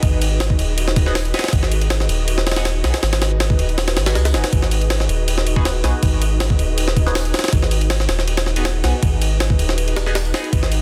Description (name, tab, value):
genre	drum and bass, jungle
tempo	160 BPM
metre	4/4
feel	straight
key	G# minor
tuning	A4 = 441 Hz
part	ethereal airy pad	sustained chords	0.0-10.8 s	D#4 to D#5	-30 LUFS	equal	ensemble chorus, built-in reverb
part	soft dub sub bass	bass	0.0-10.8 s	D#1 to C#2	-22 LUFS	equal	none
part	jungle sampler-style drum kit	drums	0.0-10.8 s	hi-hat, kick drum, ride cymbal, snare drum	-21 LUFS	equal	none
part	band-passed chord stab	stabs	1.1-10.4 s	B3 to G#4	-32 LUFS	equal	phaser, subtle chorus, cassette tape, dub echo
room	light reverb, digital ambience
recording	dense, heavily limited modern master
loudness	-18 LUFS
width	mono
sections	0.0-10.8 A section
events	none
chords	0.0 G#m7